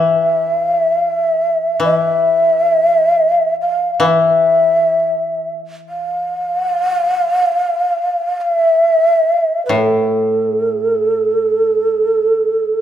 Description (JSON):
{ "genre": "japanese traditional, Japanese chamber music", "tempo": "free time", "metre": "none", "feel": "none", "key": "unclear", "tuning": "A4 = 440 Hz", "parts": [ { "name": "mellow hollow shakuhachi", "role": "melody", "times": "0.0-12.8 s", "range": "A4 to F5", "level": "-13 LUFS", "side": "equal", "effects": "none" }, { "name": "koto", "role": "accompaniment", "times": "0.0-12.8 s", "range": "A2 to E3", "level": "-20 LUFS", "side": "left 2 dB", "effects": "none" } ], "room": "moderate recital hall reverb, RT60 1.8 s", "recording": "minimal, uncompressed stereo recording", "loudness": "-13 LUFS", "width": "side -10 dB against mid", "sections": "0.0-12.8 A section", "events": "none", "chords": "none", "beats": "free time" }